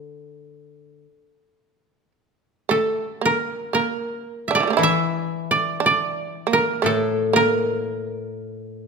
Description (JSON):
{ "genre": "japanese traditional, Japanese chamber music", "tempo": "57 BPM", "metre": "4/4", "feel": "rubato", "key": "unclear", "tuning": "A4 = 441 Hz", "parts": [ { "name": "koto", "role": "melody", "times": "0.0-8.9 s", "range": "A4 to E5", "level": "-21 LUFS", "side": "right 2 dB", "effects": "none" }, { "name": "shamisen", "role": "second line", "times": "0.0-8.9 s", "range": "D3 to E4", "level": "-25 LUFS", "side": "right 7 dB", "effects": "none" }, { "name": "koto", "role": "accompaniment", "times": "0.0-8.9 s", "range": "A2 to E3", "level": "-25 LUFS", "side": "left 4 dB", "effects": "none" } ], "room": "moderate recital hall reverb, RT60 1.5 s", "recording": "minimal, uncompressed stereo recording", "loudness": "-19 LUFS", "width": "side -4 dB against mid", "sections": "0.0-2.7 A section; 2.7-8.9 B section", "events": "none", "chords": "none", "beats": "0.51 1.60 | 2.69 3.74 4.79 5.82 | 6.85 7.87" }